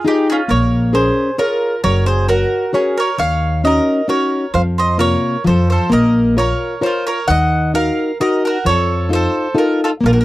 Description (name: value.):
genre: italian folk, Italian serenade.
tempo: 132 BPM.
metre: 3/4.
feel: straight.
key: Bb minor.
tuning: A4 = 442 Hz.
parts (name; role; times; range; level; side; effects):
mandolin; melody; 0.0-10.2 s; F4 to Gb5; -19 LUFS; right 1 dB; none.
bowl-back mandolin; second line; 0.0-10.2 s; Db4 to Eb5; -23 LUFS; right 4 dB; none.
nylon-string guitar; accompaniment; 0.0-10.2 s; C3 to Db5; -16 LUFS; left 2 dB; none.
upright bass; bass; 0.5-10.2 s; Gb1 to F2; -18 LUFS; equal; none.
room: light reverb.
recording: dry, close 1970s-style studio recording.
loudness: -13 LUFS.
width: side -17 dB against mid.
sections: 0.5-10.2 A section.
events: none.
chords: 0.5 Bbm7; 1.8 Gb; 3.2 Ebm7; 4.5 Fsus4; 5.5 F; 5.9 Bbm; 7.3 Ebm; 8.7 F7.